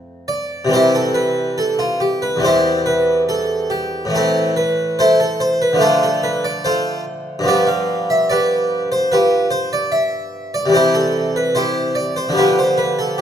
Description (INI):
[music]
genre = classical, baroque-style suite movement for harpsichord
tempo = 73 BPM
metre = 4/4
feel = rubato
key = C major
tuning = A4 = 437 Hz
[part]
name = harpsichord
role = solo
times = 0.0-13.2 s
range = E2 to F5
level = -15 LUFS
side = equal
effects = none
[sound]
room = wet recital hall reverb, RT60 1.6 s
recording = none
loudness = -15 LUFS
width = side -9 dB against mid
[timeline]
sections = 0.7-13.2 A section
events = none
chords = 0.0 F; 0.7 C; 2.4 C/E; 4.1 Am; 5.8 Dm; 7.5 G7; 10.7 C; 12.4 G7/D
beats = | 0.73 1.57 2.41 3.26 | 4.12 4.97 5.82 6.64 | 7.47 8.29 9.11 9.93 | 10.74 11.55 12.37 13.19